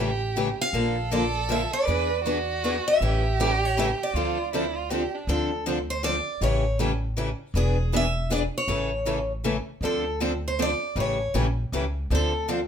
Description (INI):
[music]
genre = acoustic string swing (jazz manouche)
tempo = 158 BPM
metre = 3/4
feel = swing 62% on 8ths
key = D minor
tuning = A4 = 440 Hz
[part]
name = picked steel-string acoustic guitar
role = melody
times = 0.0-12.5 s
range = G#4 to G5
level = -27 LUFS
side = equal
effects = none
[part]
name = rich violin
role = second line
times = 0.0-5.3 s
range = D4 to B4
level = -29 LUFS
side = right 5 dB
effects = none
[part]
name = picked steel-string acoustic guitar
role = accompaniment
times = 0.0-12.6 s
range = C#3 to A4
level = -29 LUFS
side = left 5 dB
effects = none
[part]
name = picked steel-string acoustic guitar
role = accompaniment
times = 0.0-12.6 s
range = D3 to B4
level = -32 LUFS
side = right 4 dB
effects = none
[part]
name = upright bass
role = bass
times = 0.0-12.7 s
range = E1 to E2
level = -28 LUFS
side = equal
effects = none
[sound]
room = light reverb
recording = minimal, uncompressed stereo recording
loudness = -23 LUFS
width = side -8 dB against mid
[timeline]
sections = 0.0-5.3 A section; 5.3-12.7 B section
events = none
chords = 0.0 A7; 0.7 Bbmaj7; 1.9 E7; 3.0 A7; 4.1 Dm7; 6.4 A7; 7.5 E7; 8.7 A; 9.8 Dm7; 11.0 A7; 12.1 Dm7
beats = 0.36 | 0.74 1.12 1.50 | 1.87 2.25 2.63 | 3.01 3.39 3.77 | 4.15 4.52 4.90 | 5.28 5.66 6.04 | 6.42 6.79 7.17 | 7.55 7.93 8.31 | 8.69 9.06 9.44 | 9.82 10.20 10.58 | 10.96 11.34 11.72 | 12.10 12.47